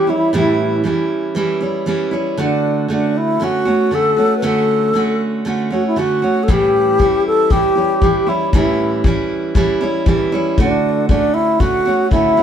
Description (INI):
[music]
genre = acoustic pop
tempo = 117 BPM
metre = 4/4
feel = swing 55% on 16ths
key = D major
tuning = A4 = 440 Hz
[part]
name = alto flute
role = melody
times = 0.0-12.4 s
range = D4 to B4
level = -16 LUFS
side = left 1 dB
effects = none
[part]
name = picked steel-string acoustic guitar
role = accompaniment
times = 0.0-12.4 s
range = A2 to F#4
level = -17 LUFS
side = right 2 dB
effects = none
[part]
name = kick drum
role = drums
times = 6.5-12.2 s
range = none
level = -16 LUFS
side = left 1 dB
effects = none
[sound]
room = light reverb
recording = band playing live in one room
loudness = -13 LUFS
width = side -8 dB against mid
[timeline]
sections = 0.0-12.4 A section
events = none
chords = 0.0 A7; 2.4 Dmaj7; 6.5 A7; 10.6 Dmaj7